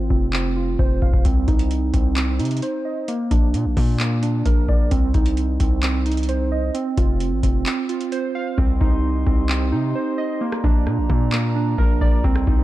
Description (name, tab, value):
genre	hip hop, trap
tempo	131 BPM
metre	4/4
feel	half-time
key	C minor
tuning	A4 = 442 Hz
part	warbly lo-fi synth keys	arpeggios	0.0-12.6 s	Bb3 to F5	-23 LUFS	right 4 dB	chorus, low-pass filter, tape echo
part	distorted 808-style bass	bass	0.0-12.6 s	F1 to C3	-22 LUFS	left 1 dB	distortion
part	booming analog drum machine	drums	0.1-12.6 s	handclaps, hi-hat, kick drum, rim click	-20 LUFS	left 1 dB	none
part	glass harmonica	sustained chords	8.6-12.6 s	F4 to C6	-32 LUFS	left 1 dB	none
room	little or no reverb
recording	dark, warm production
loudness	-18 LUFS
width	side -15 dB against mid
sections	0.0-12.6 A section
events	break 0.0-1.2, 7.7-8.6; filter sweep on synth keys 0.0-8.6; hi-hats muted 8.6-12.6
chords	0.0 F5; 1.2 Cm; 3.1 Bb; 4.9 Cm; 6.7 F5; 8.6 Cm; 10.4 Bb